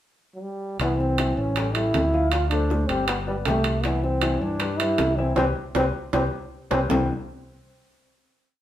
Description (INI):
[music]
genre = Afro-Cuban jazz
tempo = 157 BPM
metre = 4/4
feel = straight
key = C major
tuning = A4 = 440 Hz
[part]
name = warm trombone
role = melody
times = 0.3-7.1 s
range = F#3 to F4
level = -26 LUFS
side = equal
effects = plate reverb
[part]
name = warm baby grand piano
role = accompaniment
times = 0.8-7.1 s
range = C3 to G5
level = -29 LUFS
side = left 4 dB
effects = none
[part]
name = modern bright fingered electric bass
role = bass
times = 0.8-7.1 s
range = G1 to G2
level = -26 LUFS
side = equal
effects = none
[part]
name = bongos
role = percussion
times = 0.8-7.0 s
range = none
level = -32 LUFS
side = left 3 dB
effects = none
[part]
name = timbales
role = percussion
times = 0.8-7.0 s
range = none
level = -29 LUFS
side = right 4 dB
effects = none
[sound]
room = wet club reverb, RT60 0.8 s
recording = heard from further back in the room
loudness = -21 LUFS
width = side -12 dB against mid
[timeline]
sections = 0.0-0.8 pickup bar; 0.8-6.9 A section; 6.9-8.4 final chord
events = drum fill 5.4-6.9; band accent 5.4-6.9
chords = 0.0 N.C.; 0.8 C; 1.6 A5; 2.3 Dm7; 3.1 Gadd9; 3.8 Cmaj7; 6.9 Cmaj9